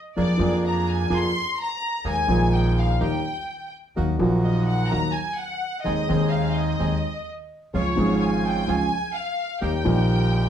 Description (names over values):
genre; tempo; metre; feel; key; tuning
tango; 127 BPM; 4/4; rubato; unclear; A4 = 441 Hz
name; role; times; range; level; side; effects
warm studio violin section; second line; 0.2-10.5 s; Db5 to C6; -27 LUFS; equal; none
dark baby grand piano; accompaniment; 0.2-10.5 s; Ab1 to Ab4; -22 LUFS; equal; none
bandoneon; stabs; 0.2-10.5 s; Bb3 to Ab4; -32 LUFS; right 1 dB; none
upright bass; bass; 0.2-10.5 s; Ab1 to F2; -27 LUFS; right 1 dB; none
room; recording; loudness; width
wet club reverb, RT60 0.6 s; heard from further back in the room; -20 LUFS; side -9 dB against mid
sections
0.0-10.5 A section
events
violin section solo 0.0-10.5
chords
0.2 Bb7/F; 2.0 Ebsus4; 3.0 Eb; 4.0 Ebm; 5.9 Ab/Eb; 7.7 Db; 9.6 Eb